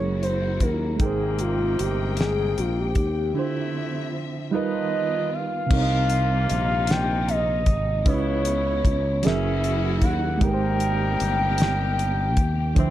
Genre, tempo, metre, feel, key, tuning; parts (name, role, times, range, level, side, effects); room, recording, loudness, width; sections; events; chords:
slow six-eight R&B; 51 BPM (dotted quarters); 6/8; straight; A4 = 439 Hz
gliding portamento lead; melody; 0.0-12.9 s; F4 to G5; -26 LUFS; equal; chorus, slapback echo, plate reverb
reed electric piano; accompaniment; 0.0-12.9 s; C3 to G5; -28 LUFS; right 5 dB; fast tremolo
warm studio string section; sustained chords; 0.0-12.9 s; C3 to G5; -33 LUFS; left 2 dB
sustaining fretless electric bass; bass; 0.0-12.9 s; F#1 to Eb2; -25 LUFS; equal; analog chorus
damped 70s drum kit; drums; 0.2-12.9 s; crash cymbal, hi-hat, kick drum, snare drum; -23 LUFS; equal
clear horn section; stabs; 1.0-12.9 s; C3 to B4; -33 LUFS; left 4 dB; plate reverb
light reverb; dark, warm production; -21 LUFS; side -13 dB against mid
0.0-5.7 A section; 5.7-12.9 B section
soft synth lead solo 0.0-5.7; break 3.4-5.7
0.0 F#9; 1.0 Abmaj9; 3.4 Dm9; 4.5 G7alt; 5.7 Cm7; 8.1 Dbm7; 9.2 F#9; 10.4 Abmaj9